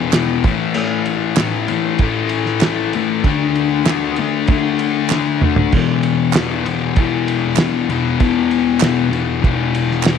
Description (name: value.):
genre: garage rock duo or trio.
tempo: 97 BPM.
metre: 4/4.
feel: straight.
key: unclear.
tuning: A4 = 440 Hz.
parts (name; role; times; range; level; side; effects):
thick fuzz guitar; riff; 0.0-10.2 s; E2 to D4; -16 LUFS; left 8 dB; distortion.
cloth-damped thuddy drum kit; drums; 0.1-10.2 s; crash cymbal, kick drum, ride cymbal, snare drum, toms; -19 LUFS; right 2 dB; none.
group handclap; percussion; 0.1-10.2 s; none; -26 LUFS; right 13 dB; none.
room: light reverb, small room ambience.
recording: 1960s-style stereo with parts hard left and right, lossy compression artefacts.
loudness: -14 LUFS.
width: side -7 dB against mid.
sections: 0.0-10.2 A section.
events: drum fill 5.1-5.7.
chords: 0.5 A5; 3.3 D5; 5.7 E5.